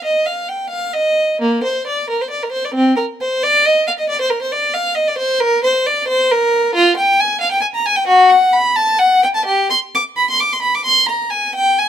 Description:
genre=classical, baroque-style suite movement for unaccompanied violin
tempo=89 BPM (dotted quarters)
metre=12/8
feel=rubato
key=Eb major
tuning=A4 = 440 Hz
part: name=rich violin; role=solo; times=0.0-11.9 s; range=Bb3 to D6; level=-13 LUFS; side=equal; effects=none
room=light reverb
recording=none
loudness=-13 LUFS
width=side -9 dB against mid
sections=0.0-11.9 A section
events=none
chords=none

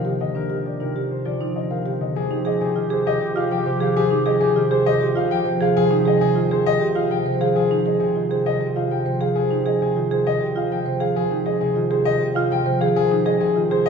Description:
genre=classical, minimalist pattern music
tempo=200 BPM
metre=6/4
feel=straight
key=Ab major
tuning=A4 = 440 Hz
part: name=warm concert grand piano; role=melody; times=0.0-13.9 s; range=Ab4 to G5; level=-24 LUFS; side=left 6 dB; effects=none
part: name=concert harp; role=accompaniment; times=0.0-13.9 s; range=C3 to C4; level=-23 LUFS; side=left 1 dB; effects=none
part: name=marimba with medium mallets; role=arpeggios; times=0.0-13.9 s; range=D4 to C5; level=-22 LUFS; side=right 5 dB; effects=none
part: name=mellow clarinet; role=second line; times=2.2-5.6 s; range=G4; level=-29 LUFS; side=left 1 dB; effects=none
room=wet scoring stage reverb, RT60 2.0 s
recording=recorded in a church or concert hall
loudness=-18 LUFS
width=side -6 dB against mid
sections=0.0-2.2 A section; 2.2-13.9 B section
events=none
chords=0.0 Ebmaj9; 2.2 Abmaj7

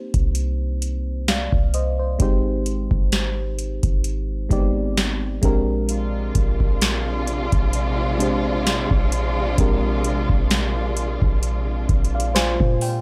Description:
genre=contemporary R&B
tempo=65 BPM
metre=4/4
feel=swing 54% on 16ths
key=unclear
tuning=A4 = 437 Hz
part: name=mellow FM electric piano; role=accompaniment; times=0.0-13.0 s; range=Ab3 to Ab5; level=-29 LUFS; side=equal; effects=chorus
part: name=clean 808-style bass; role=bass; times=0.1-13.0 s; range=Ab1 to Bb2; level=-26 LUFS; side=equal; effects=none
part: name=booming analog drum machine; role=drums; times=0.1-13.0 s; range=hi-hat, kick drum, snare drum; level=-23 LUFS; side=equal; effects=none
part: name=warm studio string section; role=sustained chords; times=5.9-13.0 s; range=C3 to F4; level=-29 LUFS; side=equal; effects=none
room=little or no reverb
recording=dry, gritty hardware recording, transformer saturation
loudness=-21 LUFS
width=mono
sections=0.0-13.0 A section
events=none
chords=0.0 Cm7; 2.2 Abmaj7; 5.4 Bb13

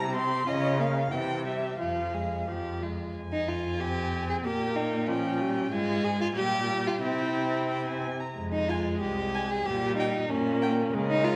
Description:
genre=quick classical-period movement for string quartet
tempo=92 BPM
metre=2/4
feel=rubato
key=F minor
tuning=A4 = 436 Hz
part: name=dark violin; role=melody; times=0.0-11.4 s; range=Bb4 to C6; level=-37 LUFS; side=equal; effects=none
part: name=rich violin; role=second line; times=0.0-11.4 s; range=Db4 to Ab4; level=-33 LUFS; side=equal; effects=none
part: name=rich viola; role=accompaniment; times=0.0-11.4 s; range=E3 to Db4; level=-35 LUFS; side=equal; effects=none
part: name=rich cello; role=bass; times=0.0-11.4 s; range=C2 to Db3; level=-35 LUFS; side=equal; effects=none
room=wet scoring stage reverb, RT60 1.6 s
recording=none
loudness=-29 LUFS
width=mono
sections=0.0-3.1 A section; 3.1-11.4 B section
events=none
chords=0.5 Bbm/Db; 1.1 C; 1.8 Fm; 4.4 Gdim/Bb; 5.7 Fm/Ab; 6.4 Gm7/Bb; 7.0 C; 8.4 Fm; 9.7 Gdim/Bb

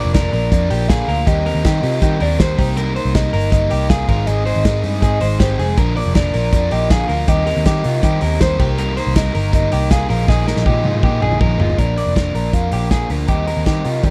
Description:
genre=jangly indie pop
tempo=160 BPM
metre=4/4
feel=straight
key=unclear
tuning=A4 = 440 Hz
part: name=crunchy overdriven guitar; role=accompaniment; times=0.0-14.1 s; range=Ab2 to Bb4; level=-26 LUFS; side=equal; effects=none
part: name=electric guitar through a small old amp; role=arpeggios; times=0.0-14.1 s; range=F4 to D5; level=-28 LUFS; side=equal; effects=none
part: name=vintage muted picked electric bass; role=bass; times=0.0-14.1 s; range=F1 to Eb3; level=-21 LUFS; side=equal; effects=none
part: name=warbly nostalgic lead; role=melody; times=0.1-14.1 s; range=C5 to F5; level=-25 LUFS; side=equal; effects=chorus
part: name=loose indie drum kit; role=drums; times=0.1-14.1 s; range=crash cymbal, hi-hat, kick drum, ride cymbal, snare drum, toms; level=-20 LUFS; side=equal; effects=none
room=studio reverb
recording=dry, close 1970s-style studio recording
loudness=-16 LUFS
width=mono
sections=0.0-11.8 A section; 11.8-14.1 B section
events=drum fill 10.3-11.8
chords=0.0 Bb; 1.3 Eb6; 2.6 Cm7; 4.1 Ab; 5.8 Bb; 7.3 Eb6; 8.6 Cm7; 10.1 Bb7sus4; 11.8 Bb; 13.3 Eb6

